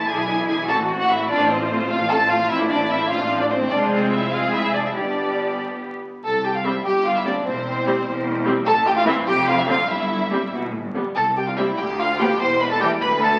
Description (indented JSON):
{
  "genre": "quick classical-period movement for string orchestra",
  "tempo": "98 BPM (dotted quarters)",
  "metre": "6/8",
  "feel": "rubato",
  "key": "C major",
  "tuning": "A4 = 439 Hz",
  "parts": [
    { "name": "rich studio violin section", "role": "melody", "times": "0.0-13.4 s", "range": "C5 to C6", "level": "-26 LUFS", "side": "equal", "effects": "none" },
    { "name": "rich studio viola section", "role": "accompaniment", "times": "0.0-12.9 s", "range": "D3 to E4", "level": "-28 LUFS", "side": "equal", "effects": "none" },
    { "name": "rich studio cello section", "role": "bass", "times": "0.0-13.4 s", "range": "C2 to Ab4", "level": "-30 LUFS", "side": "equal", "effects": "none" },
    { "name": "rich studio violin section", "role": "second line", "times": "0.1-13.4 s", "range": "C4 to C5", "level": "-25 LUFS", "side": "equal", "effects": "none" },
    { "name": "clear studio double bass section", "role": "bass", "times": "0.1-13.4 s", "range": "E1 to D2", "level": "-32 LUFS", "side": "equal", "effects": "none" }
  ],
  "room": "wet stone room reverb, RT60 1.1 s",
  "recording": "very old 78 rpm record, vinyl crackle",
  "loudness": "-21 LUFS",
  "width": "mono",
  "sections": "0.0-6.2 A section; 6.2-13.4 B section",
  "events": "none",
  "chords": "0.1 E7/B; 0.7 Am; 1.3 F/A; 2.5 Dm7/A; 3.7 Fm; 5.0 G; 6.2 C5; 7.5 C/E; 8.7 Am; 9.3 Dm7/F; 9.9 C/G; 10.5 G; 11.2 C5; 11.8 Dmadd11; 12.4 Am9/E"
}